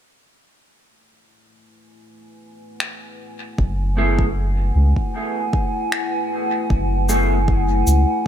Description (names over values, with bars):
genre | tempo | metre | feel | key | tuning
ambient dub | 77 BPM | 4/4 | swing 54% on 16ths | F# minor | A4 = 445 Hz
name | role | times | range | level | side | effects
warbly tape-like pad | sustained chords | 3.2-8.3 s | A3 to G#5 | -24 LUFS | equal | chorus, built-in reverb
finger snaps and shaker | drums | 2.8-8.0 s | none | -27 LUFS | left 1 dB | dub echo
soft dub sub bass | bass | 3.6-8.1 s | F#1 to C#2 | -18 LUFS | equal | tube saturation
electronic kick drum | drums | 3.6-7.6 s | none | -22 LUFS | equal | none
mellow electric guitar | stabs | 4.0-7.4 s | A3 to G#4 | -25 LUFS | right 1 dB | wide subtle chorus, dub echo
room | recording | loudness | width
light reverb, studio reverb | none | -17 LUFS | side -9 dB against mid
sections
0.5-6.7 A section; 6.7-8.3 B section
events
filter sweep on ambient pad 0.5-6.7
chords
0.5 F#m11